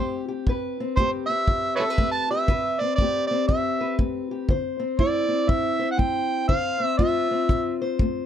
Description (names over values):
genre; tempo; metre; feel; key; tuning
acoustic country blues, solo or duo; 120 BPM; 4/4; swing 61% on 8ths; A minor; A4 = 440 Hz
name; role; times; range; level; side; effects
overdriven harmonica; melody; 0.0-7.8 s; B4 to A5; -24 LUFS; right 3 dB; none
fingerpicked steel-string acoustic guitar; accompaniment; 0.0-8.3 s; A2 to C5; -26 LUFS; left 3 dB; none
kick drum; drums; 0.5-8.1 s; none; -24 LUFS; equal; none
room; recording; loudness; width
little or no reverb; close, detailed microphones; -21 LUFS; side -9 dB against mid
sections
0.0-8.3 A section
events
none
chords
0.0 Am9; 4.5 Dm9